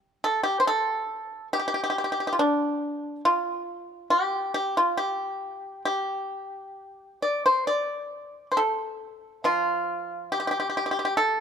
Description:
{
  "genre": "chinese traditional, Chinese solo plucked strings",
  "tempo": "69 BPM",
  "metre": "4/4",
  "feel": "rubato",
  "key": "unclear",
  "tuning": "A4 = 438 Hz",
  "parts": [
    { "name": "pipa", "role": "solo", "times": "0.2-11.4 s", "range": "F3 to D5", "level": "-24 LUFS", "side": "equal", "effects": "none" }
  ],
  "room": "light reverb",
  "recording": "close, detailed microphones",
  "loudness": "-24 LUFS",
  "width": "side -7 dB against mid",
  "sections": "0.0-11.4 A section",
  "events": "none",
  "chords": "none"
}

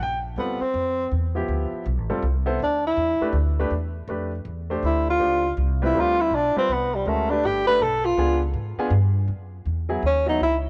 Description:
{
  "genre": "jazz",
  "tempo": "162 BPM",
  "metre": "3/4",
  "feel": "swing 64% on 8ths",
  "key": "D dorian",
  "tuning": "A4 = 441 Hz",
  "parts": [
    { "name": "clear grand piano", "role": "accompaniment", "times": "0.0-10.4 s", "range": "F3 to G5", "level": "-31 LUFS", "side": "equal", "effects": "cassette tape" },
    { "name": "upright bass", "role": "bass", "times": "0.0-10.7 s", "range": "F1 to G#2", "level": "-28 LUFS", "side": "equal", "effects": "tube saturation" },
    { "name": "mellow tenor saxophone", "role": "melody", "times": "0.4-10.6 s", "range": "G3 to B4", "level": "-24 LUFS", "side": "equal", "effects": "none" }
  ],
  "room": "light reverb",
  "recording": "home recording on cassette",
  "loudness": "-23 LUFS",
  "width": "mono",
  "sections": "0.4-9.3 A section; 9.3-10.7 A section",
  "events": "tenor saxophone solo 0.4-10.7",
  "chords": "0.4 Dm9; 2.6 Em7/D; 4.8 Dm7; 7.1 Gmaj9#11; 8.2 C#7b9; 9.3 F#7sus4"
}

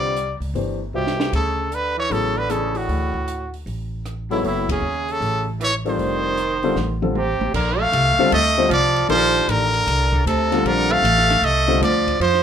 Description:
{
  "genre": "modal jazz",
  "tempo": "154 BPM",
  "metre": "4/4",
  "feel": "swing 65% on 8ths",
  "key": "Bb major from 7.5 s",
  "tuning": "A4 = 442 Hz",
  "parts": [
    { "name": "brilliant trumpet", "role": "melody", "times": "0.0-12.4 s", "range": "E4 to F5", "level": "-21 LUFS", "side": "equal", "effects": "none" },
    { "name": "breathy tenor saxophone", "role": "second line", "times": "0.0-12.4 s", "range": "Ab2 to A3", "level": "-24 LUFS", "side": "right 5 dB", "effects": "none" },
    { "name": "warm grand piano", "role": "accompaniment", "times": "0.0-11.8 s", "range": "D3 to E5", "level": "-23 LUFS", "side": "left 4 dB", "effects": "none" },
    { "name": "upright bass", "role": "bass", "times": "0.0-12.4 s", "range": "F1 to F2", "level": "-24 LUFS", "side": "equal", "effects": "none" },
    { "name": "compact cocktail drum kit", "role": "drums", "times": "0.2-12.4 s", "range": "crash cymbal, hi-hat, kick drum, ride cymbal, rim click, snare drum, toms", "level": "-30 LUFS", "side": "equal", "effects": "none" }
  ],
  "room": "moderate studio reverb, RT60 0.5 s",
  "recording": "minimal, uncompressed stereo recording",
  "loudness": "-17 LUFS",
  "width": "side -8 dB against mid",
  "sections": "0.0-7.5 A section; 7.5-12.4 B section",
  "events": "drum fill 0.9-1.3, 6.8-7.5; band accent 4.6",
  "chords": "0.0 Cmaj9; 1.3 Dmaj9; 6.0 F9; 7.5 Bbmaj9"
}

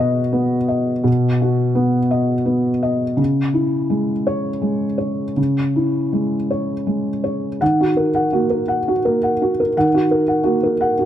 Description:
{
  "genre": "neoclassical minimalist piano",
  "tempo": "55 BPM (dotted quarters)",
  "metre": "6/8",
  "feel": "uneven beats, rubato",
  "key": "unclear",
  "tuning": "A4 = 440 Hz",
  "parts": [
    { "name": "felt-muted upright piano", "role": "solo", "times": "0.0-11.1 s", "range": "B2 to F#5", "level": "-16 LUFS", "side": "equal", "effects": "none" }
  ],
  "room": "light reverb",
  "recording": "dark, warm production",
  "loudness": "-16 LUFS",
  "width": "side -11 dB against mid",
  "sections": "0.0-7.6 A section; 7.6-11.1 A section",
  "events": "none",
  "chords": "0.0 B; 3.2 C#m; 7.6 D#m"
}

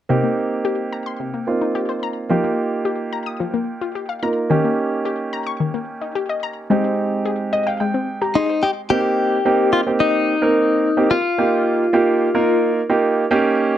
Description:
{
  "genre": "pop",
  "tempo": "109 BPM",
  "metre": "4/4",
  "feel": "straight",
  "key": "C minor",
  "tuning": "A4 = 439 Hz",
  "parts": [
    { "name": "warm grand piano", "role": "accompaniment", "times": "0.1-13.8 s", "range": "Ab3 to C6", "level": "-19 LUFS", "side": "right 3 dB", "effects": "none" },
    { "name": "wide unison pluck", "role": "arpeggios", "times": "0.1-8.8 s", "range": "C3 to Eb6", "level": "-23 LUFS", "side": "left 5 dB", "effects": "slapback echo" },
    { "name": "direct-recorded clean electric guitar", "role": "melody", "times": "8.4-12.7 s", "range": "Eb4 to G4", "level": "-18 LUFS", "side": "left 3 dB", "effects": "phaser, slapback echo" }
  ],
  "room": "moderate booth ambience, RT60 0.2 s",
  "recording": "dry, close 1970s-style studio recording",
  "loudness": "-17 LUFS",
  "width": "side -11 dB against mid",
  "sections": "0.1-8.9 A section; 8.9-13.8 B section",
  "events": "grand piano fill 7.3-8.9",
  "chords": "0.1 Cm7; 2.3 F9sus4; 4.5 Eb7; 6.7 Abmaj7; 8.9 Cm7; 11.1 F9sus4"
}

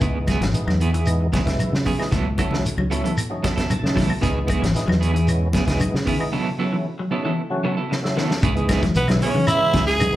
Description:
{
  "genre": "afrobeat",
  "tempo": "114 BPM",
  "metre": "4/4",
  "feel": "straight",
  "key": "C# minor",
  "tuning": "A4 = 440 Hz",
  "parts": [
    { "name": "percussive tonewheel organ", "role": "accompaniment", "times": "0.0-10.2 s", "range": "C#3 to A5", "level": "-28 LUFS", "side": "equal", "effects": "slow rotary speaker, overdrive, chorus vibrato, slapback echo" },
    { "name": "semi-hollow electric guitar", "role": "arpeggios", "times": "0.0-10.1 s", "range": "A2 to F#3", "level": "-28 LUFS", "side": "left 3 dB", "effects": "analog chorus, slapback echo, tape echo" },
    { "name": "electric guitar at the edge of break-up", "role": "stabs", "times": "0.0-9.9 s", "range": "F#3 to A4", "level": "-26 LUFS", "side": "right 5 dB", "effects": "tremolo, slapback echo" },
    { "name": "fingered electric bass", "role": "bass", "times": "0.0-10.2 s", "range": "G#1 to C#3", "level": "-22 LUFS", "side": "equal", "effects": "none" },
    { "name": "warm soul drum kit", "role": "drums", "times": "0.0-10.1 s", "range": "hi-hat, kick drum, snare drum", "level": "-25 LUFS", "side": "equal", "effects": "none" },
    { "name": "shekere", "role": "percussion", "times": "0.0-10.1 s", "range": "none", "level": "-26 LUFS", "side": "equal", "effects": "none" },
    { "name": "claves", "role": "percussion", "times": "0.3-10.1 s", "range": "none", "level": "-34 LUFS", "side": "left 3 dB", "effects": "none" },
    { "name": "congas", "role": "percussion", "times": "0.3-10.1 s", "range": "none", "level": "-26 LUFS", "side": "equal", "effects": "none" },
    { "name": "raspy tenor saxophone", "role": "melody", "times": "9.0-10.2 s", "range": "B3 to G#4", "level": "-21 LUFS", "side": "equal", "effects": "none" },
    { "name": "bright alto saxophone", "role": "second line", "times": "9.0-10.2 s", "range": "B4 to G#5", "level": "-24 LUFS", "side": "right 4 dB", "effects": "none" }
  ],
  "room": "light reverb",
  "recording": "live gig heard through the venue's PA, club reverb",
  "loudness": "-18 LUFS",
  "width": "side -14 dB against mid",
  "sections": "0.0-8.4 A section; 8.4-10.2 B section",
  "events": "tonewheel organ fill 3.2-4.2; break 6.3-8.4; drum fill 7.9-8.4",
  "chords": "0.0 C#m7; 2.1 B7sus4/C#; 4.2 C#m7; 6.3 B7sus4/C#; 8.4 C#m7"
}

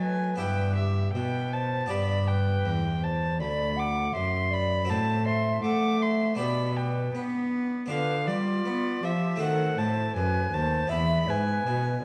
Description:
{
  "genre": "classical, baroque-style sonata movement with continuo",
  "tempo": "80 BPM",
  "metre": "4/4",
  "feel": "straight",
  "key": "unclear",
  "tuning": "A4 = 441 Hz",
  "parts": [
    { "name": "warm violin", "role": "melody", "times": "0.0-12.0 s", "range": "D5 to D6", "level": "-34 LUFS", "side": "equal", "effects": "none" },
    { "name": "hollow concert flute", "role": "second line", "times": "0.0-12.0 s", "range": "F4 to F#5", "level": "-35 LUFS", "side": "equal", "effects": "none" },
    { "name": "harpsichord", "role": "accompaniment", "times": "0.0-12.0 s", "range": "D2 to A4", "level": "-37 LUFS", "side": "equal", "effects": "none" },
    { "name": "rich cello", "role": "bass", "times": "0.0-12.0 s", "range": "D2 to B3", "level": "-30 LUFS", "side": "equal", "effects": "none" }
  ],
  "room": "moderate recital hall reverb, RT60 1.4 s",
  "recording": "vinyl crackle",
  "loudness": "-27 LUFS",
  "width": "mono",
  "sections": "0.0-12.0 A section",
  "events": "none",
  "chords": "0.4 Em/G; 1.9 G; 4.9 F#dim/A; 6.4 G/B; 7.9 Bdim/D; 9.4 D#dim7; 10.9 E"
}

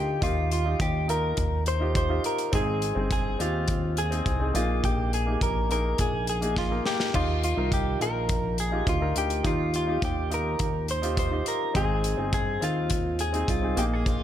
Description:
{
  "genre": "piano-driven pop",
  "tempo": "104 BPM",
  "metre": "4/4",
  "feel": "straight",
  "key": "Eb major",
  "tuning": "A4 = 441 Hz",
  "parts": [
    { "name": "direct-recorded clean electric guitar", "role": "melody", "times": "0.0-14.2 s", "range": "F4 to C5", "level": "-29 LUFS", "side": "equal", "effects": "wide subtle chorus" },
    { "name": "clear baby grand piano", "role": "accompaniment", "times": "0.0-14.2 s", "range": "Bb2 to Bb4", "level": "-31 LUFS", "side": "right 1 dB", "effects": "none" },
    { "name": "chorused synth bass", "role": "bass", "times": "0.0-14.2 s", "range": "G1 to Eb2", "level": "-28 LUFS", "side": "equal", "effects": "none" },
    { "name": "modern studio drum kit", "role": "drums", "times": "0.2-14.2 s", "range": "crash cymbal, hi-hat, kick drum, snare drum", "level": "-30 LUFS", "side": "equal", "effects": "none" }
  ],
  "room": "light reverb",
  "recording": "none",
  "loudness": "-24 LUFS",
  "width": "side -10 dB against mid",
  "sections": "0.0-14.2 A section",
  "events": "drum fill 6.6-7.1",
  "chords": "0.0 Ebadd9; 2.5 Ab; 4.5 Bb7sus4; 7.1 Ebadd9; 11.8 Ab"
}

